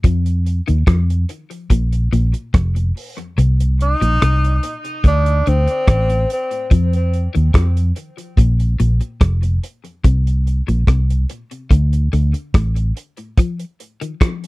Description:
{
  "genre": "dub reggae",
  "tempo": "72 BPM",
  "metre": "4/4",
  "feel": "straight",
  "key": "unclear",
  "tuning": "A4 = 438 Hz",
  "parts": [
    { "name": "clean electric guitar", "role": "riff", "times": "0.0-14.5 s", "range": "F2 to F3", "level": "-25 LUFS", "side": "left 4 dB", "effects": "analog chorus, tape echo" },
    { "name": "vintage muted fingered electric bass", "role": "bass", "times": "0.0-12.9 s", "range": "F1 to F2", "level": "-15 LUFS", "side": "equal", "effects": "none" },
    { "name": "damped 70s drum kit", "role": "drums", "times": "0.0-14.5 s", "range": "hi-hat, kick drum, rim click", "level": "-14 LUFS", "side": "equal", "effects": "none" },
    { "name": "warm tenor saxophone", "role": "melody", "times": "3.8-6.7 s", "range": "C4 to Eb4", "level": "-20 LUFS", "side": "equal", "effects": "tape echo" }
  ],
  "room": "little or no reverb",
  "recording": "dry, close 1970s-style studio recording",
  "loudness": "-14 LUFS",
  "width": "side -21 dB against mid",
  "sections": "0.0-14.5 A section",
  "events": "break 0.0-3.4; kick muted 3.4-5.0",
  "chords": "0.0 Ebsus2; 1.7 Bb5; 3.4 Cm7; 5.0 D5; 6.7 Ebsus2; 8.4 Bb5; 10.0 Bbsus2; 11.7 D5; 13.4 N.C.",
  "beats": "| 0.04 0.88 1.71 2.54 | 3.38 4.21 5.04 5.88 | 6.71 7.54 8.38 9.21 | 10.04 10.88 11.71 12.54 | 13.38 14.21"
}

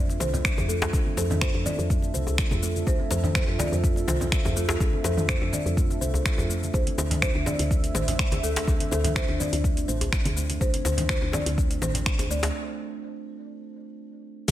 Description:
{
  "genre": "afro house",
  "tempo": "124 BPM",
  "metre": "4/4",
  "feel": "swing 53% on 16ths",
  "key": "D minor",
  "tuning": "A4 = 440 Hz",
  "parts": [
    { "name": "folk marimba with medium mallets", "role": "melody", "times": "0.0-14.0 s", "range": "A4 to D5", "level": "-34 LUFS", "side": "left 1 dB", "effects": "diffuse ambient delay" },
    { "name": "dark analog pad", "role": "sustained chords", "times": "0.0-14.5 s", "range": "D4 to E5", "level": "-35 LUFS", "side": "right 2 dB", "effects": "chorus, phaser, sidechain pumping" },
    { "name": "kalimba", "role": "arpeggios", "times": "0.0-14.5 s", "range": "A3 to C5", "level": "-34 LUFS", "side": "right 1 dB", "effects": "sidechain pumping, diffuse ambient delay" },
    { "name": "woody FM bass", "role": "bass", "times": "0.0-12.5 s", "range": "A1 to F2", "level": "-28 LUFS", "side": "equal", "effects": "sidechain pumping" },
    { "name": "afro-pop drum kit", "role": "drums", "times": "0.1-14.5 s", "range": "cabasa, crash cymbal, finger snaps, hi-hat, toms", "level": "-29 LUFS", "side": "left 1 dB", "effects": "none" },
    { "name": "congas", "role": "percussion", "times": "0.1-14.5 s", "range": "none", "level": "-35 LUFS", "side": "right 1 dB", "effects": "none" },
    { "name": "djembe", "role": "percussion", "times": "0.2-14.5 s", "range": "none", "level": "-32 LUFS", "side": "left 1 dB", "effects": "none" },
    { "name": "electronic kick drum", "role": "drums", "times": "0.4-14.5 s", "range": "none", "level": "-25 LUFS", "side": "equal", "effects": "none" }
  ],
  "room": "light reverb, small room ambience",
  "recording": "none",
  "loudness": "-22 LUFS",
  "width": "side -13 dB against mid",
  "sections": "0.0-14.5 A section",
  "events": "break 12.5-14.5",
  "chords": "0.0 Fmaj7; 6.7 D7(no3)",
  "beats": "0.45 | 0.93 1.42 1.90 2.38 | 2.87 3.35 3.84 4.32 | 4.80 5.29 5.77 6.25 | 6.74 7.22 7.71 8.19 | 8.68 9.16 9.64 10.13 | 10.61 11.09 11.58 12.06 | 12.55 13.03 13.51 14.00 | 14.48"
}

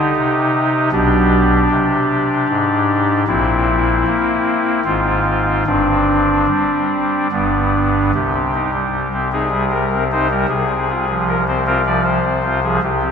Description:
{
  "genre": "classical, chorale-style piece for pipe organ",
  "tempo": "77 BPM",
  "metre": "3/4",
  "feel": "rubato",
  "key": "unclear",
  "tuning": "A4 = 439 Hz",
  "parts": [
    { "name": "pipe organ, soft reed", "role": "solo", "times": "0.0-13.1 s", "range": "G1 to D5", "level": "-14 LUFS", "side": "left 1 dB", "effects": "none" }
  ],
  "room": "wet church reverb, RT60 2.5 s",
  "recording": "none",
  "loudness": "-14 LUFS",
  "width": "side -6 dB against mid",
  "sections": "0.0-8.1 A section; 8.1-13.1 B section",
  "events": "none",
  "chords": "0.0 Cm; 0.9 G/B; 3.3 C7/Bb; 4.8 Fm/Ab; 5.7 Gsus4; 7.3 G; 8.1 Cm; 10.5 Fm/C",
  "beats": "0.15 | 0.92 1.70 2.48 | 3.27 4.05 4.84 | 5.66 6.48 7.31 | 8.13 8.92 9.70 | 10.48 11.26 12.04 | 12.82"
}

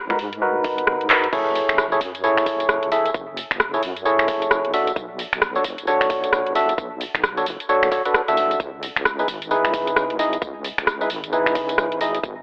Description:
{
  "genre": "UK garage, two-step garage",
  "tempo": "132 BPM",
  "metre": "4/4",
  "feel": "swing 61% on 16ths",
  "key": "F# dorian",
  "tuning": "A4 = 440 Hz",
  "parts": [
    { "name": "deep soft wobble bass", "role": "bass", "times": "0.0-12.4 s", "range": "F#1 to G#2", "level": "-32 LUFS", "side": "equal", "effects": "chorus" },
    { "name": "percussive organ stab", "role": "stabs", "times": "0.1-12.2 s", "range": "D4 to E5", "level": "-20 LUFS", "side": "equal", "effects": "chorus, analog delay" },
    { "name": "garage drum kit", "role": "drums", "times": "0.1-12.3 s", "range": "congas, crash cymbal, finger snaps, handclaps, hi-hat, rim click, tambourine", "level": "-22 LUFS", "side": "equal", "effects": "none" },
    { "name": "electronic kick drum", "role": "drums", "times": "0.6-12.3 s", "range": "none", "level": "-26 LUFS", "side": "equal", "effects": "none" }
  ],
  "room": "wet plate reverb, RT60 1.9 s, digital ambience",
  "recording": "dry, gritty hardware recording, cassette tape, telephone sound",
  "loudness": "-18 LUFS",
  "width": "side -37 dB against mid",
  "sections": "0.0-1.3 A section; 1.3-12.4 B section",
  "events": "drum fill 1.1; drop 1.3-12.4",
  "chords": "0.0 G#m7; 1.3 F#m7; 4.7 Bm7; 8.6 C#m7",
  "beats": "0.42 0.87 | 1.33 1.78 2.23 2.69 | 3.14 3.60 4.05 4.51 | 4.96 5.42 5.87 6.33 | 6.78 7.24 7.69 8.14 | 8.60 9.05 9.51 9.96 | 10.42 10.87 11.33 11.78 | 12.23"
}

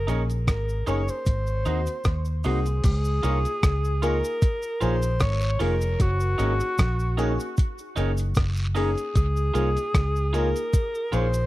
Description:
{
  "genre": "lovers rock reggae",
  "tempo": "76 BPM",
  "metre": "4/4",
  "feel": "swing 55% on 16ths",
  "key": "Db major",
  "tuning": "A4 = 440 Hz",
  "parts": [
    { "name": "warm alto saxophone", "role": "melody", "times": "0.0-11.5 s", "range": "Gb4 to Db5", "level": "-29 LUFS", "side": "equal", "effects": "tape echo" },
    { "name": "vintage muted fingered electric bass", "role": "bass", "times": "0.0-11.5 s", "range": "F1 to Eb2", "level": "-24 LUFS", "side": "equal", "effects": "none" },
    { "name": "FM electric piano with soft pad layer", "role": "accompaniment", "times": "0.1-11.3 s", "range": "Bb3 to Ab4", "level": "-31 LUFS", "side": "left 4 dB", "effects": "chorus" },
    { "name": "electric guitar through a small old amp", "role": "stabs", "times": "0.1-11.3 s", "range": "Eb4 to Db5", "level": "-31 LUFS", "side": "right 6 dB", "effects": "vibrato effect" },
    { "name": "clean 12-bit digital drum machine", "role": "drums", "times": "0.1-11.5 s", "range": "crash cymbal, hi-hat, kick drum, rim click", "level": "-22 LUFS", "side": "equal", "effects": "none" },
    { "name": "cabasa and guiro", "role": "percussion", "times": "0.1-11.5 s", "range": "none", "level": "-43 LUFS", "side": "right 2 dB", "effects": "tape echo" }
  ],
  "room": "digital ambience",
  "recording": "dry, close 1970s-style studio recording",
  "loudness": "-22 LUFS",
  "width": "side -17 dB against mid",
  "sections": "0.0-2.8 A section; 2.8-11.5 B section",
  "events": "none",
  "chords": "0.0 Gb6; 1.3 Ab7; 2.8 Db6; 6.0 Gb6; 9.2 Db6",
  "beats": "0.48 1.26 2.06 | 2.84 3.63 4.42 5.21 | 6.00 6.79 7.58 8.37 | 9.16 9.95 10.73"
}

